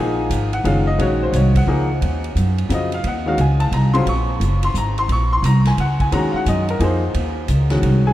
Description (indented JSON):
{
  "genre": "modal jazz",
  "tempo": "175 BPM",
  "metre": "3/4",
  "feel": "swing 65% on 8ths",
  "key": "Eb dorian",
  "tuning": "A4 = 441 Hz",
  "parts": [
    { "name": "bright upright piano", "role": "accompaniment", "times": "0.0-8.1 s", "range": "Db3 to Db6", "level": "-20 LUFS", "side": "left 1 dB", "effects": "none" },
    { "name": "upright bass", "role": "bass", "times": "0.0-8.1 s", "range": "Gb1 to Gb2", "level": "-17 LUFS", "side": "equal", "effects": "none" },
    { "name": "swinging big-band drum kit", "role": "drums", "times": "0.3-7.9 s", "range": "hi-hat, kick drum, ride cymbal, snare drum", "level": "-30 LUFS", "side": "right 1 dB", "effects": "none" }
  ],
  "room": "moderate cathedral reverb, RT60 5.5 s",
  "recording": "in a vast, echoing space",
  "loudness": "-16 LUFS",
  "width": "side -14 dB against mid",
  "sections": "0.0-8.1 A section",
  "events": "none",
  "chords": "0.0 Ebm9"
}